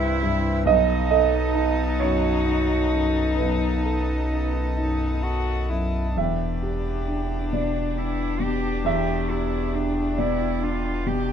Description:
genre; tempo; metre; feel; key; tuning
neoclassical piano and strings; 44 BPM (dotted quarters); 6/8; uneven beats, rubato; unclear; A4 = 442 Hz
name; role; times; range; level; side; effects
muted violin; melody; 0.0-11.3 s; D4 to F#4; -29 LUFS; left 7 dB; none
muted cello; second line; 0.0-11.3 s; D4 to G4; -30 LUFS; right 7 dB; none
warm baby grand piano; accompaniment; 0.0-11.3 s; B1 to E5; -25 LUFS; right 3 dB; none
pedal harmonium; sustained chords; 0.0-11.3 s; B3 to E5; -34 LUFS; right 1 dB; none
punchy sub bass; bass; 0.0-11.3 s; E1 to C2; -27 LUFS; equal; none
room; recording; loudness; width
little or no reverb; minimal, uncompressed stereo recording; -21 LUFS; side -8 dB against mid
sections
0.0-11.3 A section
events
none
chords
0.0 Cmaj7; 0.7 B7; 6.2 Em7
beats
| 0.67 2.01 | 3.38 4.77 | 6.17 7.54 | 8.86 10.19

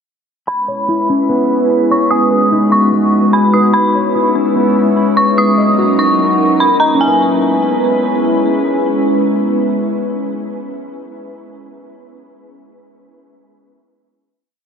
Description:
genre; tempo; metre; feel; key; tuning
hip hop, atmospheric cloud-rap; 147 BPM; 4/4; half-time; C# dorian; A4 = 441 Hz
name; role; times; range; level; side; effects
dark detuned synth bell; melody; 0.5-8.2 s; G#5 to D#6; -16 LUFS; equal; chorus, low-pass filter, ping-pong delay
glassy FM pad; sustained chords; 0.7-10.6 s; F#3 to B4; -14 LUFS; equal; ensemble chorus, built-in reverb, low-pass filter
mellow electric guitar; arpeggios; 0.5-10.7 s; G#3 to C#6; -18 LUFS; left 3 dB; spring reverb, low-pass filter, ping-pong delay
room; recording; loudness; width
moderate huge ambient reverb, RT60 7.4 s; none; -11 LUFS; side -6 dB against mid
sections
0.5-7.0 breakdown; 7.0-10.3 final chord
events
filter sweep 0.5-7.0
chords
0.5 C#m7; 2.1 B6; 3.7 C#m7; 5.4 D#m7; 7.0 C#m7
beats
| 0.48 0.88 1.29 1.70 | 2.11 2.52 2.92 3.33 | 3.74 4.15 4.56 4.97 | 5.37 5.78 6.19 6.60 | 7.01 7.42 7.82 8.23 | 8.64 9.05 9.46 9.86

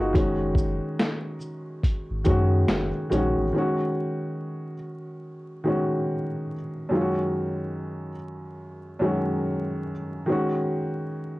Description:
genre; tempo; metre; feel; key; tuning
lo-fi hip hop; 71 BPM; 4/4; swing 62% on 16ths; Eb minor; A4 = 440 Hz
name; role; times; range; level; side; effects
felt-muted upright piano; accompaniment; 0.0-11.4 s; Gb2 to Cb5; -25 LUFS; equal; none
warm sub bass; bass; 0.0-3.5 s; Gb1 to Gb2; -26 LUFS; equal; tube saturation
lo-fi sampler-style drum kit; drums; 0.1-3.4 s; hi-hat, kick drum, shaker, snare drum; -24 LUFS; equal; cassette tape
room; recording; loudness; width
moderate studio reverb, RT60 0.6 s; home recording on cassette, vinyl crackle, nothing above 10.8 kHz; -23 LUFS; side -19 dB against mid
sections
0.0-3.5 A section; 3.5-11.4 B section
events
none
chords
0.1 Ebm7/Gb; 3.5 Ab5; 6.9 Ebm7/Gb; 10.3 Ab5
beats
| 0.15 0.99 1.84 2.68 | 3.53 4.37 5.22 6.06 | 6.91 7.75 8.60 9.44 | 10.29 11.13

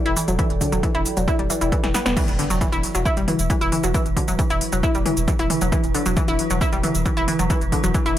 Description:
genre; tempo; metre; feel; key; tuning
driving peak-time techno; 135 BPM; 4/4; straight; E minor; A4 = 438 Hz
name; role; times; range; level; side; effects
analog pluck; riff; 0.0-8.1 s; D3 to E4; -22 LUFS; equal; chorus, tube saturation, cassette tape, sidechain pumping, analog delay
warbly tape-like pad; texture; 0.0-2.2 s; A4 to G5; -31 LUFS; right 3 dB; chorus, built-in reverb, phaser, sidechain pumping
saturated sub bass; bass; 0.1-8.2 s; E1; -26 LUFS; equal; overdrive, sidechain pumping, low-pass filter
techno drum kit; drums; 0.1-8.1 s; crash cymbal, hi-hat, shaker, snare drum, toms; -27 LUFS; equal; analog delay
electronic kick drum; drums; 0.4-8.0 s; none; -22 LUFS; equal; none
metallic inharmonic drone; drone; 2.8-8.2 s; E3; -29 LUFS; equal; chorus, built-in reverb, sidechain pumping
impact; sound effects; 2.2-3.9 s; none; -31 LUFS; equal; none
room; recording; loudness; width
light reverb; echo-heavy mix; -18 LUFS; side -12 dB against mid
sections
0.0-2.2 A section; 2.2-8.2 B section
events
drum fill 1.8-2.2; drop 2.2-8.2; impact 2.2-3.9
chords
0.0 Em; 2.2 N.C.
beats
| 0.39 0.83 1.28 1.72 | 2.17 2.61 3.06 3.50 | 3.94 4.39 4.83 5.28 | 5.72 6.17 6.61 7.06 | 7.50 7.95

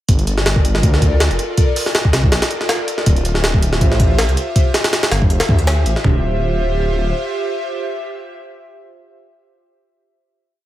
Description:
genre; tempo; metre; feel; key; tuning
drum and bass, jungle; 161 BPM; 4/4; swing 55% on 16ths; D minor; A4 = 443 Hz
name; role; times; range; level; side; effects
airy breathy pad; sustained chords; 0.1-9.1 s; F4 to E5; -23 LUFS; equal; chorus
detuned saw bass; bass; 0.1-7.1 s; D1 to D2; -17 LUFS; equal; none
jungle sampler-style drum kit; drums; 0.1-6.1 s; hi-hat, kick drum, snare drum, toms; -15 LUFS; equal; none
room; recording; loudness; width
digital ambience; none; -14 LUFS; side -14 dB against mid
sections
0.1-6.0 drop; 6.0-9.0 final chord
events
drop 0.1-6.0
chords
0.1 Gm9; 3.1 Dm11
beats
| 0.09 0.46 0.83 1.20 | 1.58 1.95 2.32 2.69 | 3.07 3.44 3.81 4.18 | 4.56 4.93 5.30 5.67 | 6.05 6.42 6.79 7.17 | 7.54 7.91 8.28 8.66

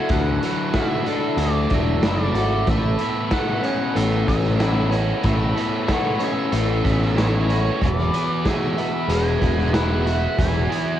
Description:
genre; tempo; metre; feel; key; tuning
rock, shoegaze and dream pop; 93 BPM; 4/4; straight; A major; A4 = 438 Hz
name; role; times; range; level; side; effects
octave-fuzz lead guitar; melody; 0.0-11.0 s; C#5 to G#5; -30 LUFS; equal; distortion, cassette tape, tape echo
direct-recorded clean electric guitar; arpeggios; 0.0-11.0 s; E3 to A4; -30 LUFS; right 9 dB; ensemble chorus, cassette tape, tape echo
biting overdriven guitar; riff; 0.0-11.0 s; D3 to E5; -26 LUFS; right 8 dB; reverse reverb, cassette tape
overdriven semi-hollow guitar; riff; 0.0-11.0 s; E2 to F#4; -24 LUFS; left 8 dB; lush chorus, cassette tape
growling picked electric bass; bass; 0.1-10.7 s; E1 to D2; -22 LUFS; equal; overdrive
raw garage drum kit; drums; 0.1-10.9 s; hi-hat, kick drum, snare drum; -25 LUFS; equal; cassette tape
room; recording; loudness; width
studio ambience; home recording on cassette; -18 LUFS; side -11 dB against mid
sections
0.0-11.0 A section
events
none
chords
0.0 Dadd9; 2.7 Aadd9; 7.8 Eadd9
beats
| 0.09 0.74 1.38 2.02 | 2.67 3.31 3.95 4.60 | 5.24 5.88 6.53 7.17 | 7.81 8.45 9.10 9.74 | 10.38

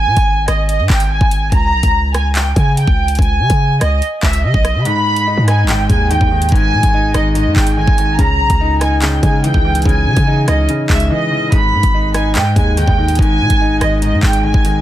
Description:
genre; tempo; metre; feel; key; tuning
hip hop, drill; 144 BPM; 4/4; half-time; G# harmonic minor; A4 = 440 Hz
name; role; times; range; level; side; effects
rich studio violin section; melody; 0.0-14.8 s; D#5 to B5; -17 LUFS; right 1 dB; low-pass filter, ping-pong delay
hard-hitting 808-style bass; bass; 0.0-14.8 s; G#1 to C#3; -16 LUFS; equal; none
drill drum kit; drums; 0.2-14.7 s; handclaps, hi-hat, kick drum, rim click; -16 LUFS; equal; none
clear concert grand piano; accompaniment; 4.9-14.8 s; G#2 to D#4; -18 LUFS; left 1 dB; low-pass filter
room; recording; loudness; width
little or no reverb; dense, heavily limited modern master, vinyl crackle; -11 LUFS; side -13 dB against mid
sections
0.0-14.8 A section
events
kick muted 4.9-5.3; silent gap 11.1-11.5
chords
0.0 G#5; 1.5 C#5; 4.9 G#5; 8.2 C#madd9; 11.5 G#5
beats
0.27 0.69 1.10 | 1.52 1.94 2.35 2.77 | 3.19 3.60 4.02 4.44 | 4.85 5.27 5.69 6.10 | 6.52 6.94 7.35 7.77 | 8.19 8.60 9.02 9.44 | 9.85 10.27 10.69 11.10 | 11.52 11.94 12.35 12.77 | 13.19 13.60 14.02 14.44

